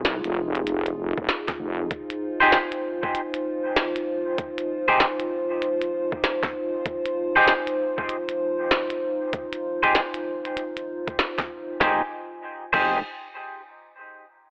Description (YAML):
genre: glitch hop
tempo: 97 BPM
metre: 4/4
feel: swing 63% on 16ths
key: F minor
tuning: A4 = 440 Hz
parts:
  - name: dark analog pad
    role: sustained chords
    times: 0.0-12.1 s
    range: Eb4 to Ab5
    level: -30 LUFS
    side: equal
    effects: chorus, sidechain pumping
  - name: wobble bass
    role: bass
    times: 0.0-1.9, 11.8-13.0 s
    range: Eb1 to C2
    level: -31 LUFS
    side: equal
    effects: chorus, tube saturation
  - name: glitchy drum kit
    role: drums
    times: 0.0-12.9 s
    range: crash cymbal, hi-hat, snare drum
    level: -27 LUFS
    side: equal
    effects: none
  - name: electronic kick drum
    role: drums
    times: 1.2-12.9 s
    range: none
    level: -36 LUFS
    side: equal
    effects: none
  - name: semi-hollow electric guitar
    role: stabs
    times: 2.4-13.0 s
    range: Eb4 to C5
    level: -24 LUFS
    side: equal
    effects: vintage 12-bit sampler grit, sidechain pumping, low-pass filter, dub echo
room: moderate plate reverb, RT60 1.6 s, digital ambience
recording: telephone sound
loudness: -25 LUFS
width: mono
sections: 0.0-11.8 A section; 11.8-14.3 B section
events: none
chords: 0.0 Fm7; 11.8 Fm9